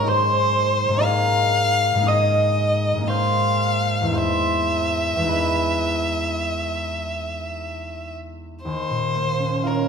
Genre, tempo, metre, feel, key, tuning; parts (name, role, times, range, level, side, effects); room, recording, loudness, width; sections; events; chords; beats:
classical, impressionist duo for violin and harp; 52-64 BPM; 4/4; rubato; A4 = 441 Hz
warm violin; melody; 0.0-9.9 s; A#4 to F5; -23 LUFS; left 2 dB
concert harp; accompaniment; 0.0-9.9 s; Eb2 to Eb6; -21 LUFS; equal
wet concert hall reverb, RT60 1.9 s; minimal, uncompressed stereo recording; -19 LUFS; side -6 dB against mid
0.0-8.6 A section; 8.6-9.9 B section
0.1 Abadd9; 4.2 Emaj7; 8.6 Eb7sus2
| 0.10 1.04 2.08 3.09 | 4.17 5.30 6.45 7.57 | 8.64 9.64